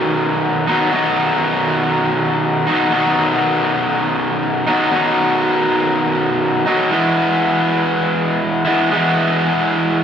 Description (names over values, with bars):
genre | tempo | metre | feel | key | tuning
rock | 120 BPM | 4/4 | straight | B major | A4 = 440 Hz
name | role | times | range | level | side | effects
raw garage guitar | solo | 0.0-10.0 s | B2 to E4 | -14 LUFS | equal | overdrive
room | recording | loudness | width
moderate large studio reverb, RT60 0.8 s | band playing live in one room | -14 LUFS | side -8 dB against mid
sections
0.0-10.0 A section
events
none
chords
0.0 B; 6.9 E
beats
0.43 | 0.93 1.43 1.93 2.43 | 2.93 3.43 3.93 4.43 | 4.93 5.43 5.93 6.43 | 6.93 7.43 7.93 8.43 | 8.93 9.43 9.93